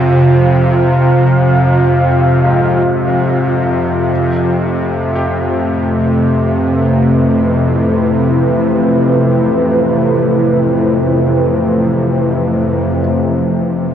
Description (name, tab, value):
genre	dark ambient drone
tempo	free time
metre	none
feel	none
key	unclear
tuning	A4 = 443 Hz
part	deep dark ambient pad	sustained chords	0.0-13.9 s	A3 to F5	-14 LUFS	equal	chorus, built-in reverb
part	bowed-like drone	drone	0.0-13.9 s	F2 to C3	-13 LUFS	equal	built-in reverb
part	bright concert grand piano	arpeggios	2.4-13.0 s	Ab2 to G4	-28 LUFS	left 2 dB	none
room	wet huge ambient reverb, RT60 7.9 s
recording	worn, warbling old tape, cassette tape, warbly pitch drift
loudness	-10 LUFS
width	side -9 dB against mid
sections	0.0-13.0 A section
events	none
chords	0.0 Fm; 4.1 Am; 13.0 F5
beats	free time